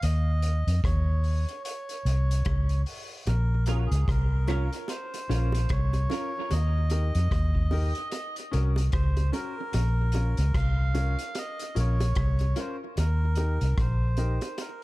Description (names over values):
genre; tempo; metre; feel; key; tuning
dub reggae; 74 BPM; 4/4; swing 58% on 16ths; Bb minor; A4 = 439 Hz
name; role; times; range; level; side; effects
melodica; melody; 0.0-14.8 s; Gb4 to F5; -36 LUFS; right 2 dB; tape echo
vintage muted fingered electric bass; bass; 0.0-14.4 s; Bb1 to F2; -24 LUFS; equal; none
vintage drum kit; drums; 0.0-14.8 s; hi-hat, kick drum, rim click; -32 LUFS; equal; none
bongos; percussion; 3.3-14.8 s; none; -39 LUFS; right 3 dB; high-pass filter on perc, tape echo
clean electric guitar; accompaniment; 3.7-6.3 s; Db4 to Bb4; -38 LUFS; right 6 dB; ensemble chorus, tape echo
warm baby grand piano; stabs; 3.7-14.4 s; Db4 to Bb4; -38 LUFS; left 3 dB; high-pass filter, tape echo
room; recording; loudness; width
little or no reverb; echo-heavy mix; -24 LUFS; side -19 dB against mid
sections
0.0-14.8 A section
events
break 0.0-3.3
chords
0.0 Dbsus2/Eb; 1.6 N.C.; 3.3 Bbm; 6.5 Eb; 8.1 Gb; 9.7 Bbm; 13.0 Eb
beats
| 0.03 0.84 1.65 2.46 | 3.27 4.08 4.88 5.69 | 6.50 7.31 8.12 8.93 | 9.74 10.54 11.35 12.16 | 12.97 13.78 14.59